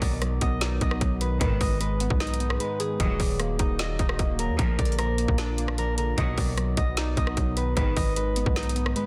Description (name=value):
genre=hip hop, trap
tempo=151 BPM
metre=4/4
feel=half-time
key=unclear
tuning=A4 = 440 Hz
part: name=concert harp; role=melody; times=0.0-9.1 s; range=Ab4 to D#5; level=-34 LUFS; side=equal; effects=tape echo
part: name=glassy digital keys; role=accompaniment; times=0.0-9.1 s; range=Ab2 to Eb5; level=-34 LUFS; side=equal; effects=chorus
part: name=dark analog pad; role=sustained chords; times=0.2-9.1 s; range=Eb3 to D5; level=-40 LUFS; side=equal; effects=none
part: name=rich symphonic string section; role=stabs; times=0.0-8.1 s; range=Cb2 to F#3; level=-38 LUFS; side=equal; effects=none
part: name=long sustained 808-style bass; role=bass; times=0.0-8.9 s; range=Eb1 to Eb2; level=-31 LUFS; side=equal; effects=none
part: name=trap drum kit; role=drums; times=0.0-9.1 s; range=hi-hat, kick drum, rim click, snare drum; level=-29 LUFS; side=equal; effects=vintage 12-bit sampler grit, soft clipping on snare
room=digital ambience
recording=dense, heavily limited modern master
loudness=-26 LUFS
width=mono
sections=0.0-9.1 A section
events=none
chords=0.0 B; 1.4 Abm; 3.0 Ebm; 4.6 Bb; 6.2 B; 7.8 Abm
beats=0.22 0.61 1.01 | 1.41 1.81 2.20 2.60 | 3.00 3.40 3.79 4.19 | 4.59 4.99 5.38 5.78 | 6.18 6.58 6.97 7.37 | 7.77 8.16 8.56 8.96